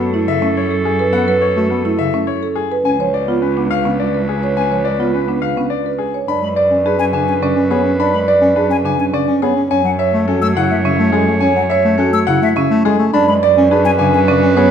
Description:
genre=classical, minimalist pattern music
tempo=105 BPM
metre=3/4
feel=straight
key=unclear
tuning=A4 = 440 Hz
part: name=bright grand piano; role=melody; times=0.0-14.7 s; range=G#4 to B5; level=-20 LUFS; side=left 12 dB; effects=none
part: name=bright clarinet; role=second line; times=0.0-14.7 s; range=A4 to C#5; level=-22 LUFS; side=right 2 dB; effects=none
part: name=mellow bass clarinet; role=accompaniment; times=0.0-14.7 s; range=C#3 to D4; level=-19 LUFS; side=left 2 dB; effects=none
part: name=marimba with medium mallets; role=arpeggios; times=0.0-14.7 s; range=C#4 to D5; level=-17 LUFS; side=right 5 dB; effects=none
part: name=rich cello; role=bass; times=0.0-14.7 s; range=C#2 to F#2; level=-21 LUFS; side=right 2 dB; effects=none
part: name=bright silver concert flute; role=arpeggios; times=1.1-14.2 s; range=E5 to E6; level=-23 LUFS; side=left 6 dB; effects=none
room=moderate recital hall reverb, RT60 1.3 s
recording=minimal, uncompressed stereo recording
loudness=-13 LUFS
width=side -8 dB against mid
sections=0.0-6.3 A section; 6.3-14.7 B section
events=none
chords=0.0 F#m7; 2.9 C#7b9; 6.3 G#dim/F#; 9.7 A6/F#; 13.1 G#dim/F#

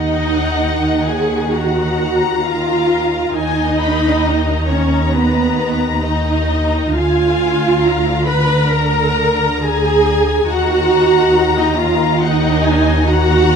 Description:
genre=classical, slow romantic movement for string orchestra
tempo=67 BPM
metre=4/4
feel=rubato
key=Eb minor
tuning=A4 = 441 Hz
part: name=warm symphonic violin section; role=melody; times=0.0-13.6 s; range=Gb5 to B5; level=-22 LUFS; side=left 9 dB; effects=none
part: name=rich symphonic violin section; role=second line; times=0.0-13.6 s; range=B4 to Cb6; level=-22 LUFS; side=left 3 dB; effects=none
part: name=warm symphonic viola section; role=accompaniment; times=0.0-13.6 s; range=B3 to Cb5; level=-16 LUFS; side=right 2 dB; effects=none
part: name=rich symphonic double bass section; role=bass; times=0.0-13.6 s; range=D2 to Eb2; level=-20 LUFS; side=right 1 dB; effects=none
part: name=warm symphonic cello section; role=bass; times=0.0-13.6 s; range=D3 to Eb3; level=-22 LUFS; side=right 2 dB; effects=none
room=moderate scoring stage reverb, RT60 1.6 s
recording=close, detailed microphones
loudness=-13 LUFS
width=side -6 dB against mid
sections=0.0-13.6 A section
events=none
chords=0.0 Ebm; 3.3 Bmaj9/D#; 6.9 Bb7/D; 10.5 Ebm

